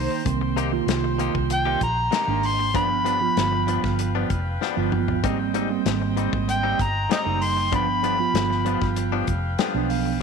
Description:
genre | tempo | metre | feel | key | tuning
straight-eighth soul blues | 96 BPM | 4/4 | straight | unclear | A4 = 441 Hz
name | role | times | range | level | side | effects
overdriven harmonica | melody | 0.0-8.9 s | C5 to C6 | -24 LUFS | equal | none
mellow tine electric piano | accompaniment | 0.0-10.2 s | Eb3 to G5 | -26 LUFS | right 12 dB | medium stereo tremolo
bright horn section | sustained chords | 0.0-10.2 s | B4 to C6 | -34 LUFS | left 2 dB | none
vintage muted fingered electric bass | bass | 0.0-10.2 s | F1 to C2 | -27 LUFS | equal | none
direct-recorded clean electric guitar | stabs | 0.1-10.1 s | G2 to G4 | -31 LUFS | left 11 dB | none
warm soul drum kit | drums | 0.3-10.0 s | hi-hat, kick drum, snare drum, toms | -28 LUFS | left 6 dB | none
room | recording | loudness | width
moderate echo chamber reverb, RT60 2.0 s | 1960s-style stereo with parts hard left and right | -20 LUFS | side -5 dB against mid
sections
0.0-10.2 A section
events
harmonica solo 0.0-10.2; drum fill 4.6-5.2; tine electric piano fill 9.3-10.2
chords
0.0 Cm7; 2.7 G7; 5.2 Abmaj7; 7.7 G7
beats
| 0.26 0.88 1.50 2.12 | 2.74 3.37 3.99 4.61 | 5.23 5.86 6.48 7.10 | 7.72 8.35 8.97 9.59

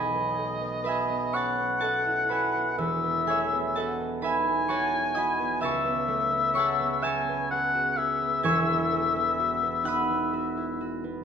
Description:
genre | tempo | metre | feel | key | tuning
classical, impressionist duo for oboe and harp | 42 BPM (dotted quarters) | 6/8 | rubato | unclear | A4 = 440 Hz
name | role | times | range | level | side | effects
warm oboe | melody | 0.0-11.0 s | D#5 to G#5 | -27 LUFS | left 3 dB | none
concert harp | accompaniment | 0.0-11.2 s | E1 to G#6 | -27 LUFS | right 2 dB | none
room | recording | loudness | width
wet recital hall reverb, RT60 1.6 s | none | -24 LUFS | side -7 dB against mid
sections
0.0-11.2 A section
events
none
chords
0.0 B69; 2.8 Emaj9; 5.6 C#m7; 8.4 Emaj9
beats
1.34 | 2.79 4.24 | 5.63 7.04 | 8.45 9.86

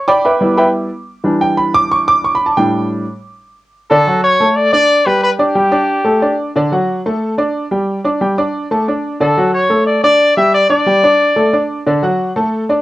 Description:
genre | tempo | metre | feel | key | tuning
latin | 181 BPM | 4/4 | straight | D major | A4 = 440 Hz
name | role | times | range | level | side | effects
clear concert grand piano | accompaniment | 0.0-12.8 s | A2 to D6 | -13 LUFS | equal | cassette tape
clear trumpet | melody | 3.9-6.3, 9.2-11.7 s | G4 to E5 | -12 LUFS | left 1 dB | cassette tape
room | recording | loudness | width
light reverb | home recording on cassette | -11 LUFS | side -16 dB against mid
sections
0.0-3.9 A section; 3.9-12.8 B section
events
grand piano solo 0.0-3.9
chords
0.0 G6; 1.2 Em7; 2.6 A7sus4; 3.9 Dmaj7; 4.6 Gadd9; 5.2 G5; 5.9 A7sus4; 6.6 D; 7.2 Gsus2; 7.9 G5; 8.5 Asus4; 9.2 Dmaj7; 9.9 Gsus2; 10.5 G5; 11.2 Asus4; 11.9 D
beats
0.24 0.58 0.91 | 1.24 1.57 1.91 2.24 | 2.57 2.90 3.23 3.57 | 3.90 4.23 4.56 4.89 | 5.23 5.56 5.89 6.22 | 6.55 6.88 7.22 7.55 | 7.88 8.21 8.54 8.88 | 9.21 9.54 9.87 10.20 | 10.53 10.86 11.20 11.53 | 11.86 12.19 12.52

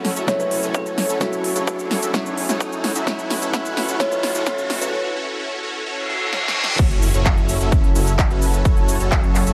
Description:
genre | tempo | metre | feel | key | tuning
EDM, festival progressive house | 129 BPM | 4/4 | straight | F# minor | A4 = 437 Hz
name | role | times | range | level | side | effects
felt-muted upright piano | accompaniment | 0.0-5.0 s | F#3 to E4 | -32 LUFS | equal | vintage 12-bit sampler grit, sidechain pumping, dub echo
lush unison pad | sustained chords | 0.0-9.5 s | F#3 to C#6 | -32 LUFS | equal | chorus, vintage 12-bit sampler grit, sidechain pumping
supersaw chords | riff | 0.0-9.5 s | C#4 to E5 | -28 LUFS | equal | analog chorus, vintage 12-bit sampler grit, sidechain pumping, low-pass filter, dub echo
detuned saw bass | bass | 0.0-9.5 s | F#1 to F#2 | -28 LUFS | equal | none
big-room dance drum kit | drums | 0.0-9.5 s | cabasa, crash cymbal, handclaps, hi-hat, snare drum | -28 LUFS | equal | overdrive
riser, reverse cymbal and impact | sound effects | 0.5-8.7 s | none | -30 LUFS | equal | none
kalimba | melody | 0.3-4.9 s | F#4 to C#5 | -29 LUFS | equal | dub echo
electronic kick drum | drums | 0.3-9.2 s | none | -20 LUFS | equal | overdrive, high-pass filter on kick
room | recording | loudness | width
light reverb, digital ambience | high-pass filter | -20 LUFS | mono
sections
0.0-6.8 A section; 6.8-9.5 B section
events
build-up 0.0-6.8; drum fill 0.0-4.9, 6.3-6.8; riser 0.5-4.9; filter sweep on supersaw synth 0.0-6.8; filter sweep 0.0-6.8; reverse cymbal 6.0-6.8; drop 6.8-9.5; impact 6.8-8.7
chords
0.0 F#m7; 3.1 B5; 4.9 A6/C#; 6.8 F#m7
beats
0.28 0.74 | 1.21 1.68 2.14 2.61 | 3.07 3.54 4.00 4.47 | 4.93 5.40 5.86 6.33 | 6.79 7.26 7.72 8.19 | 8.65 9.12

